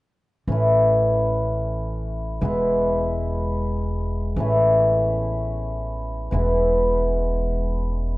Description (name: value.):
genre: balkan folk.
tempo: free time.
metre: none.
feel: none.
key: A major.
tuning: A4 = 440 Hz.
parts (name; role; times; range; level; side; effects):
cimbalom; accompaniment; 0.5-8.2 s; E3 to E4; -21 LUFS; left 1 dB; none.
upright bass; bass; 0.5-8.2 s; E1 to A1; -24 LUFS; right 1 dB; none.
room: moderate studio reverb, RT60 0.6 s.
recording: dark, warm production, nothing above 10.9 kHz.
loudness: -19 LUFS.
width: side -19 dB against mid.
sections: 0.5-8.2 A section.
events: none.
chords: 0.5 A; 2.4 E; 4.4 A; 6.3 E.